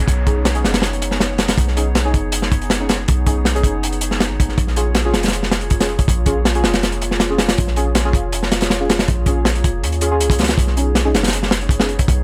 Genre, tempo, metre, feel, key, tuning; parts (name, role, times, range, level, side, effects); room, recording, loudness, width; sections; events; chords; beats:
drum and bass, jungle; 160 BPM; 4/4; straight; Bb phrygian; A4 = 442 Hz
warbly tape-like pad; sustained chords; 0.0-12.2 s; Bb3 to C#5; -29 LUFS; equal; chorus, built-in reverb
warm 808-style bass; bass; 0.0-12.2 s; F1 to Eb2; -23 LUFS; equal
downlifter; sound effects; 0.0-1.6 s; -39 LUFS; equal
crunchy breakbeat drum kit; drums; 0.1-12.2 s; hi-hat, kick drum, snare drum; -20 LUFS; equal
deep mellow chord stab; stabs; 0.3-11.9 s; C#4 to G#4; -26 LUFS; equal; chorus, dub echo
studio reverb; -17 LUFS; mono
0.0-12.2 A section
0.0 B69; 4.6 Bbm7; 10.6 B69
| 0.08 0.45 0.83 1.20 | 1.58 1.95 2.33 2.70 | 3.08 3.45 3.83 4.20 | 4.58 4.95 5.33 5.70 | 6.08 6.45 6.83 7.20 | 7.58 7.95 8.33 8.70 | 9.08 9.45 9.83 10.20 | 10.58 10.95 11.33 11.70 | 12.08